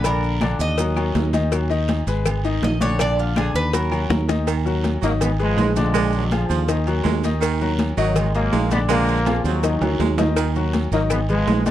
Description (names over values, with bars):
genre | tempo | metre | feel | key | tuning
latin, salsa | 163 BPM | 4/4 | straight | Eb harmonic minor | A4 = 440 Hz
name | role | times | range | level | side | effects
Cuban tres | melody | 0.0-4.3 s | F4 to Eb5 | -26 LUFS | right 2 dB | none
fingered electric bass | bass | 0.0-11.7 s | Ab1 to Eb2 | -22 LUFS | right 1 dB | none
claves | percussion | 0.0-4.1, 10.4-11.3 s | none | -35 LUFS | left 16 dB | none
congas | percussion | 0.0-11.7 s | none | -26 LUFS | left 1 dB | none
cowbell and bongos | percussion | 0.0-11.7 s | none | -28 LUFS | left 6 dB | none
maracas | percussion | 0.0-11.7 s | none | -38 LUFS | right 18 dB | none
bright baby grand piano | accompaniment | 0.1-11.7 s | D3 to Eb5 | -25 LUFS | left 6 dB | none
agogo bells and timbales | percussion | 0.1-11.7 s | none | -30 LUFS | right 7 dB | none
guiro | percussion | 0.1-11.7 s | none | -39 LUFS | right 9 dB | none
bright baritone saxophone | second line | 4.5-11.7 s | Eb3 to Ab3 | -26 LUFS | right 11 dB | none
brilliant trombone section | melody | 5.0-11.7 s | D3 to Cb4 | -24 LUFS | equal | none
room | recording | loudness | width
light reverb | dry, close 1970s-style studio recording | -18 LUFS | side -12 dB against mid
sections
0.0-4.5 A section; 4.5-11.7 B section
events
Cuban tres solo 0.0-4.5; drum fill 3.7-4.5, 9.3-10.4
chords
0.0 Bb; 0.8 Ebm; 2.3 Abm; 3.0 Bb; 3.7 Ebm; 5.2 Abm; 5.9 Bb7; 6.7 Ebm; 8.2 Ab5; 8.9 Bb7; 9.6 Ebm; 11.1 Abm